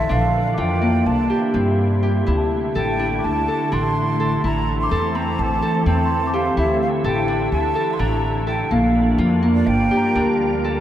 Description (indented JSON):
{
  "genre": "contemporary instrumental, chamber music in an uneven meter",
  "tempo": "250 BPM (eighths)",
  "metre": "9/8",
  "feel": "straight",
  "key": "unclear",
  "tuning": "A4 = 440 Hz",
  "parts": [
    { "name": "breathy mellow jazz flute", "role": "melody", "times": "0.0-10.6 s", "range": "D5 to C6", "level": "-24 LUFS", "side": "right 2 dB", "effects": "none" },
    { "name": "soft additive organ-like pad", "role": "sustained chords", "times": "0.0-10.8 s", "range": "C3 to Bb4", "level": "-25 LUFS", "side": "equal", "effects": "ensemble chorus, built-in reverb" },
    { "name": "Celtic harp", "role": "arpeggios", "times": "0.0-10.8 s", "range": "Bb3 to A4", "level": "-21 LUFS", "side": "left 1 dB", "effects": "none" },
    { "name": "celesta", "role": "texture", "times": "0.0-10.8 s", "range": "A5 to E6", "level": "-33 LUFS", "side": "left 1 dB", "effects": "none" },
    { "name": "upright bass", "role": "bass", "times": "0.1-10.8 s", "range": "G1 to G2", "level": "-22 LUFS", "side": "equal", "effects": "none" }
  ],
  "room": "wet huge ambient reverb, RT60 8.0 s",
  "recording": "in a vast, echoing space",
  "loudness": "-17 LUFS",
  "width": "side -11 dB against mid",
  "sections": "0.0-10.8 A section",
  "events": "none",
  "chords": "0.1 Bb; 1.1 C; 2.3 Dsus2; 4.4 Am; 8.7 Bb; 9.7 Gm7"
}